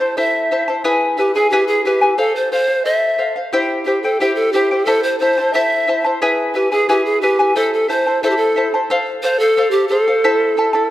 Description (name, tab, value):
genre	andean folk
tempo	89 BPM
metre	2/4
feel	straight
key	unclear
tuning	A4 = 440 Hz
part	bright polished pan flute	melody	0.0-10.9 s	G4 to E5	-16 LUFS	equal	none
part	charango	accompaniment	0.0-10.9 s	E4 to A5	-17 LUFS	left 1 dB	none
room	moderate concert hall reverb, RT60 2.2 s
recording	none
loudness	-14 LUFS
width	side -14 dB against mid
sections	0.0-8.9 A section; 8.9-10.9 B section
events	none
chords	0.0 Am; 0.8 E; 2.2 F; 3.5 C; 4.9 Am; 6.2 E; 7.6 Am; 8.9 F; 10.2 Am